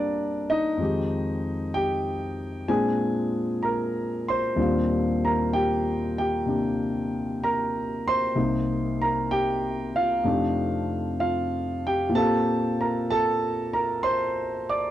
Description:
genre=solo jazz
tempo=64 BPM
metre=4/4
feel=swing 69% on 8ths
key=Bb major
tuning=A4 = 440 Hz
part: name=dark concert grand piano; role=solo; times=0.0-14.9 s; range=C2 to D6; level=-23 LUFS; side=equal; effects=none
room=little or no reverb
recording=dry, close 1970s-style studio recording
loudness=-23 LUFS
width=side -12 dB against mid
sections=0.0-14.9 A section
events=none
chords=0.0 Gm11; 0.8 Fm9; 2.7 Bb9; 4.6 Ebmaj13; 8.4 Cm7; 10.2 F13; 12.1 Bbmaj13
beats=| 0.80 1.74 2.69 3.63 | 4.57 5.52 6.46 7.41 | 8.35 9.30 10.24 11.19 | 12.14 13.08 14.03

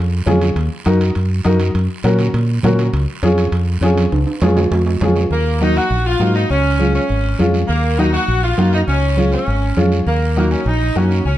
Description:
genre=latin, cumbia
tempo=202 BPM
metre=4/4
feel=straight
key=Eb minor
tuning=A4 = 442 Hz
part: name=fingered electric bass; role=bass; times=0.0-11.4 s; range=Ab1 to Bb2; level=-16 LUFS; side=equal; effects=none
part: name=clear upright piano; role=accompaniment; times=0.3-11.2 s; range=Ab3 to Bb4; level=-20 LUFS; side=left 2 dB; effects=none
part: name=congas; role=percussion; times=0.3-11.4 s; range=none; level=-21 LUFS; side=right 1 dB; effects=none
part: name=guiro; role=percussion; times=0.3-11.4 s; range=none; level=-34 LUFS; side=right 6 dB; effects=none
part: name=timbales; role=percussion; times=0.3-5.2 s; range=none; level=-24 LUFS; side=right 2 dB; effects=none
part: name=bright saxophone section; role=melody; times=5.3-11.4 s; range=Bb3 to Gb4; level=-19 LUFS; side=equal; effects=none
room=light reverb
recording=dark, warm production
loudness=-13 LUFS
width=side -13 dB against mid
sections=0.0-5.3 A section; 5.3-11.4 B section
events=drum fill 4.1-5.3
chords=0.0 Db; 0.6 Ebm; 1.8 Gb; 2.9 Db; 5.3 Ebm; 6.5 Db; 7.7 Ebm; 8.9 Db; 10.1 Ebm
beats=0.27 | 0.56 0.86 1.16 1.45 | 1.75 2.05 2.34 2.64 | 2.94 3.23 3.53 3.83 | 4.12 4.42 4.72 5.01 | 5.31 5.61 5.91 6.20 | 6.50 6.80 7.09 7.39 | 7.69 7.99 8.28 8.58 | 8.88 9.18 9.47 9.77 | 10.07 10.37 10.66 10.96 | 11.26

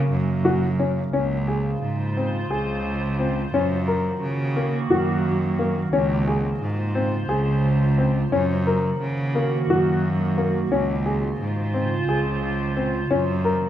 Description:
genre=contemporary instrumental, chamber music in an uneven meter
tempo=175 BPM (eighths)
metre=7/8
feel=straight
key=Gb lydian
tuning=A4 = 440 Hz
part: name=glassy FM pad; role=sustained chords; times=0.0-13.7 s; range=Db3 to C5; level=-25 LUFS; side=right 2 dB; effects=ensemble chorus, built-in reverb
part: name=dark baby grand piano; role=arpeggios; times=0.0-13.7 s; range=Bb3 to Bb4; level=-24 LUFS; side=left 3 dB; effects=none
part: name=warm cello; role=bass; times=0.0-13.7 s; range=Db2 to Db3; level=-24 LUFS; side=equal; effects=none
room=wet recital hall reverb, RT60 1.5 s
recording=dark, warm production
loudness=-20 LUFS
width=side -11 dB against mid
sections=0.0-1.1 A section; 1.1-13.7 B section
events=none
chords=0.0 Gb; 1.1 Dbmaj7; 3.5 Gb6; 5.9 Dbmaj7; 8.3 Gb6; 10.7 Dbmaj7; 13.1 Gb6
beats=0.11 0.45 0.80 | 1.14 1.48 1.82 2.16 2.51 2.85 3.19 | 3.53 3.88 4.22 4.56 4.90 5.25 5.59 | 5.93 6.27 6.61 6.96 7.30 7.64 7.98 | 8.32 8.67 9.01 9.35 9.69 10.04 10.38 | 10.72 11.06 11.40 11.75 12.09 12.43 12.77 | 13.11 13.46

